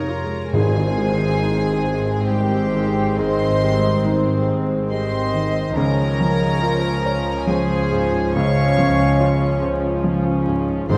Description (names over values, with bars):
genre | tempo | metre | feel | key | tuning
cinematic, emotional film score for orchestra | 70 BPM | 3/4 | rubato | Ab major | A4 = 440 Hz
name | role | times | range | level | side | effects
rich studio violin section | melody | 0.0-11.0 s | G5 to Db6 | -32 LUFS | equal | none
bright clarinet | second line | 0.0-11.0 s | G4 to Db5 | -31 LUFS | equal | none
clear studio violin section | second line | 0.0-11.0 s | G4 to Db5 | -32 LUFS | equal | none
silver concert flute | second line | 0.0-11.0 s | C5 to F5 | -30 LUFS | equal | none
rich studio viola section | accompaniment | 0.0-11.0 s | F3 to F4 | -29 LUFS | equal | none
warm baby grand piano | accompaniment | 0.0-11.0 s | Db2 to F5 | -27 LUFS | equal | none
concert harp | arpeggios | 0.0-11.0 s | Ab2 to C6 | -31 LUFS | equal | none
warm studio double bass section | bass | 0.0-11.0 s | Ab1 to F2 | -27 LUFS | equal | none
clear French horn section | sustained chords | 0.5-11.0 s | Eb3 to C5 | -29 LUFS | equal | none
warm studio cello section | bass | 0.5-11.0 s | Ab2 to Db3 | -29 LUFS | equal | none
tam-tam | percussion | 0.5-4.0 s | none | -35 LUFS | equal | none
timpani | percussion | 0.5-1.8, 10.9-11.0 s | Ab2 | -27 LUFS | equal | none
room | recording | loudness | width
moderate recital hall reverb, RT60 1.3 s | dark, warm production, vinyl crackle | -19 LUFS | mono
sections
0.5-11.0 A section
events
band accent 0.5-1.4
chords
0.0 Fm; 0.5 Abmaj7; 5.8 Dbmaj7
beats
| 0.54 1.41 2.28 | 3.18 4.05 4.90 | 5.76 6.62 7.47 | 8.35 9.20 10.05 | 10.90